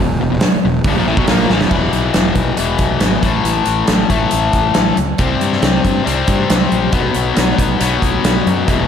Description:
classic rock; 138 BPM; 4/4; straight; A4 = 440 Hz
cranked stack guitar; riff; 0.0-8.9 s; E2 to C4; -17 LUFS; left 7 dB; overdrive
overdriven semi-hollow guitar; riff; 0.0-1.7 s; E2 to A#3; -21 LUFS; right 10 dB
fuzz fingered electric bass; bass; 0.0-8.8 s; E1 to G2; -20 LUFS; right 1 dB; overdrive
huge arena drum kit; drums; 0.4-8.8 s; crash cymbal, hi-hat, kick drum, snare drum; -16 LUFS; equal
light reverb; -12 LUFS; side -8 dB against mid
0.0-1.7 A section; 1.7-8.9 B section
drum fill 1.5
0.0 E5; 3.2 A5; 5.2 C5; 6.9 B5
0.42 0.85 1.29 | 1.72 2.16 2.59 3.02 | 3.46 3.89 4.33 4.76 | 5.20 5.63 6.07 6.50 | 6.94 7.38 7.81 8.25 | 8.68

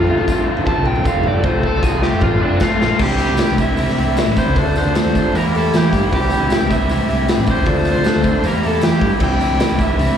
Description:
indie rock; 155 BPM; 4/4; straight; A4 = 438 Hz
biting overdriven guitar; melody; 0.0-10.2 s; D4 to A5; -21 LUFS; right 1 dB; slapback echo, tape echo
percussive tonewheel organ; sustained chords; 0.0-10.2 s; D3 to E5; -27 LUFS; right 1 dB
raw garage guitar; riff; 0.0-10.2 s; E3 to A4; -20 LUFS; equal; overdrive, slapback echo
hollow-body short-scale picked electric bass; bass; 0.0-10.1 s; E1 to E3; -20 LUFS; equal
raw garage drum kit; drums; 0.1-10.1 s; crash cymbal, hi-hat, kick drum, snare drum, toms; -18 LUFS; equal
tambourine; percussion; 0.3-10.1 s; -39 LUFS; left 2 dB
light reverb; live gig heard through the venue's PA, club reverb; -14 LUFS; side -8 dB against mid
0.0-3.0 A section; 3.0-10.2 B section
overdriven electric guitar solo 0.0-3.0; drum fill 1.5-3.0
0.0 Fmaj7; 3.0 Cadd9; 4.6 Dm7; 5.3 Edim; 6.1 Cadd9; 7.7 Dm7; 8.4 Edim; 9.2 Cadd9
0.29 0.68 1.07 | 1.46 1.84 2.23 2.62 | 3.01 3.40 3.78 4.17 | 4.56 4.95 5.34 5.72 | 6.11 6.50 6.89 7.28 | 7.66 8.05 8.44 8.83 | 9.21 9.60 9.99

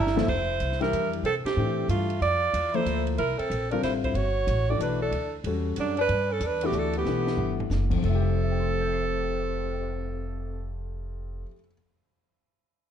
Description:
modal jazz; 186 BPM; 3/4; swing 63% on 8ths; F major; A4 = 441 Hz
clear alto saxophone; melody; 0.0-10.7 s; D4 to D5; -28 LUFS; right 6 dB
warm tenor saxophone; second line; 0.0-10.7 s; C3 to F#4; -34 LUFS; left 7 dB
warm concert grand piano; accompaniment; 0.0-11.7 s; F2 to C7; -30 LUFS; left 5 dB
upright bass; bass; 0.0-11.4 s; F1 to C3; -29 LUFS; equal
compact cocktail drum kit; drums; 0.1-9.9 s; crash cymbal, cymbal swell, hi-hat, kick drum, ride cymbal, snare drum, toms; -38 LUFS; equal
moderate large studio reverb, RT60 0.9 s; dark, warm production; -24 LUFS; side -8 dB against mid
0.3-8.0 A section; 8.0-10.0 B section
drum fill 0.0, 7.1-7.7; band accent 1.4
0.3 Fmaj9; 4.2 Gmaj9; 8.0 Fmaj9
| 0.28 0.61 0.93 | 1.25 1.57 1.90 | 2.22 2.54 2.87 | 3.19 3.51 3.83 | 4.16 4.48 4.80 | 5.13 5.45 5.77 | 6.09 6.42 6.74 | 7.06 7.39 7.71 | 8.03 8.36 8.68 | 9.00 9.32 9.65

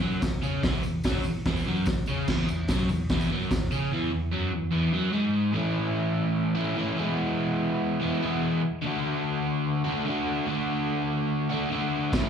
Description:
garage rock duo or trio; 146 BPM; 4/4; straight; E major; A4 = 440 Hz
crunchy overdriven guitar; riff; 0.0-12.3 s; E2 to F#4; -25 LUFS; equal; slapback echo
tambourine; percussion; 0.1-3.8, 12.1-12.2 s; -49 LUFS; left 4 dB
raw garage drum kit; drums; 0.2-3.6, 12.1-12.2 s; crash cymbal, hi-hat, kick drum, snare drum; -28 LUFS; equal
light reverb; live gig heard through the venue's PA, club reverb; -24 LUFS; side -7 dB against mid
0.0-5.5 A section; 5.5-12.3 B section
0.0 E; 5.5 A; 7.0 E; 8.8 D
0.22 | 0.63 1.03 1.45 1.85 | 2.26 2.67 3.08 3.50 | 3.90 4.32 4.73 5.14 | 5.55 5.96 6.37 6.78 | 7.19 7.60 8.01 8.43 | 8.84 9.25 9.66 10.07 | 10.48 10.89 11.30 11.71 | 12.12

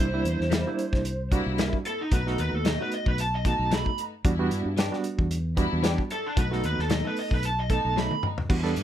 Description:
straight-eighth soul blues; 113 BPM; 4/4; swing 55% on 16ths; A4 = 438 Hz
lead guitar through a small cranked amp; melody; 0.0-8.2 s; D4 to B5; -30 LUFS; right 1 dB; overdrive
barky reed electric piano; accompaniment; 0.0-8.8 s; G3 to A4; -30 LUFS; right 4 dB; fast tremolo
warm studio string section; sustained chords; 0.0-8.8 s; G3 to E4; -38 LUFS; left 4 dB
fingered electric bass; bass; 0.0-8.8 s; B1 to G2; -28 LUFS; equal
warm soul drum kit; drums; 0.3-8.8 s; crash cymbal, hi-hat, kick drum, snare drum, toms; -27 LUFS; equal
direct-recorded clean electric guitar; stabs; 0.5-8.1 s; B2 to G4; -31 LUFS; left 4 dB; ensemble chorus
light reverb; -24 LUFS; side -11 dB against mid
0.0-8.5 A section
lead electric guitar solo 0.0-8.5; drum fill 8.0-8.5
0.0 C7; 2.1 B7; 4.2 Em7; 6.4 B7
0.52 1.05 1.58 | 2.12 2.65 3.18 3.71 | 4.25 4.78 5.31 5.84 | 6.37 6.90 7.44 7.97 | 8.50

